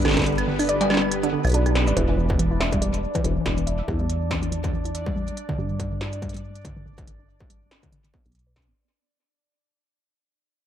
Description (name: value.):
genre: IDM.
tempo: 141 BPM.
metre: 4/4.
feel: swing 56% on 16ths.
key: unclear.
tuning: A4 = 440 Hz.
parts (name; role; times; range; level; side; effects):
soft string machine; sustained chords; 0.0-2.0 s; D3 to B4; -29 LUFS; equal; phaser, ensemble chorus, sidechain pumping.
warbly dusty pluck; arpeggios; 0.0-8.7 s; D3 to E5; -27 LUFS; right 1 dB; chorus, analog delay.
deep acid bass; bass; 0.0-8.7 s; E1 to G2; -26 LUFS; equal; none.
industrial drum kit; drums; 0.0-8.7 s; claves, hi-hat, shaker, snare drum, struck metal; -28 LUFS; equal; tape echo.
bubbling stepped-filter texture; texture; 0.0-8.8 s; B3 to D5; -33 LUFS; right 1 dB; chorus, built-in reverb.
electronic kick drum; drums; 0.2-8.7 s; none; -29 LUFS; equal; distortion.
room: moderate spring reverb, RT60 1.3 s, digital ambience.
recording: echo-heavy mix.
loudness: -21 LUFS.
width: side -10 dB against mid.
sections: 0.0-2.0 A section; 2.0-8.8 B section.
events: break 0.3-2.0; band accent 1.8; fade-out 2.0-8.8; filter sweep on synth arpeggio sound 2.0-8.8.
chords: 0.0 G; 2.0 Em; 5.4 G.